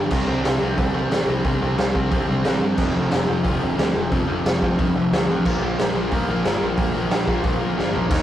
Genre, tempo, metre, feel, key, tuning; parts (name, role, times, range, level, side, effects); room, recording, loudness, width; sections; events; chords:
punk rock; 180 BPM; 4/4; straight; A4 = 441 Hz
overdriven semi-hollow guitar; riff; 0.0-8.2 s; F2 to Eb4; -22 LUFS; equal
growling picked electric bass; bass; 0.0-8.2 s; F1 to G2; -26 LUFS; equal; overdrive
raw garage drum kit; drums; 0.1-8.2 s; crash cymbal, hi-hat, kick drum, snare drum, toms; -22 LUFS; equal
light reverb; rough rehearsal-room recording, warm saturation; -18 LUFS; side -12 dB against mid
0.0-8.1 A section
half time 0.0-8.1; drum fill 7.8-8.1
0.1 C5; 2.8 F5; 5.4 Bb5